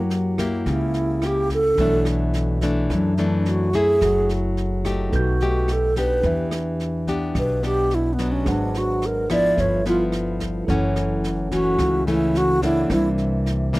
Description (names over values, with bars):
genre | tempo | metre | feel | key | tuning
bossa nova | 108 BPM | 4/4 | straight | unclear | A4 = 441 Hz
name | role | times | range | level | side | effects
mellow tine electric piano | accompaniment | 0.0-13.8 s | D4 to G6 | -31 LUFS | right 3 dB | none
nylon-string guitar | accompaniment | 0.0-13.8 s | F#2 to G#4 | -24 LUFS | left 2 dB | none
upright bass | bass | 0.0-13.8 s | F#1 to F#2 | -25 LUFS | equal | none
jazz brush drum kit | drums | 0.1-13.8 s | kick drum, rim click, snare drum | -31 LUFS | equal | none
mellow hollow alto flute | melody | 0.7-13.1 s | B3 to D5 | -21 LUFS | right 1 dB | none
room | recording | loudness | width
light reverb | dry, close 1970s-style studio recording | -19 LUFS | side -20 dB against mid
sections
0.0-13.8 A section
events
alto flute solo 0.0-13.8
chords
0.0 F#7b9; 1.8 Bm11; 4.0 F#m9; 5.1 B7b13; 6.2 Em7; 8.5 G#m7b5; 9.6 G13; 10.7 F#m7; 12.9 C9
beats
0.11 0.67 1.23 | 1.78 2.34 2.90 3.46 | 4.01 4.57 5.13 5.68 | 6.24 6.80 7.35 7.91 | 8.46 9.02 9.57 10.13 | 10.68 11.24 11.79 12.35 | 12.90 13.46